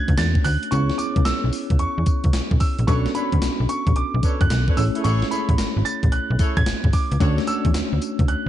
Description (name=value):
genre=R&B, new jack swing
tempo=111 BPM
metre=4/4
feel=swing 65% on 16ths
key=unclear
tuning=A4 = 441 Hz
part: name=clear concert grand piano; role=melody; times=0.0-8.5 s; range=B5 to A6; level=-28 LUFS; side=right 2 dB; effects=digital delay
part: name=mellow tine electric piano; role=accompaniment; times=0.0-8.5 s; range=A3 to C#5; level=-27 LUFS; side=left 1 dB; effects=medium stereo tremolo
part: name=slap-like FM bass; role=bass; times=0.1-8.5 s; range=F#1 to E2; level=-21 LUFS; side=equal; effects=none
part: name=gated 80s digital drum machine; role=drums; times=0.1-8.4 s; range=handclaps, hi-hat, kick drum, snare drum, tambourine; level=-21 LUFS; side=equal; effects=gated reverb, gated reverb snare, overdrive
part: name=warm horn section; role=stabs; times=2.9-7.7 s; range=D4 to C#5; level=-32 LUFS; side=right 1 dB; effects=none
room=little or no reverb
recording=dark, warm production, nothing above 10.7 kHz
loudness=-18 LUFS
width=side -12 dB against mid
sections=0.0-8.5 A section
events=none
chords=0.0 Dmaj7; 0.7 C#m7; 2.9 Bm9; 4.8 Amaj7; 7.2 Dmaj7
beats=0.18 | 0.72 1.26 1.80 2.34 | 2.88 3.42 3.96 4.50 | 5.04 5.58 6.12 6.66 | 7.21 7.75 8.29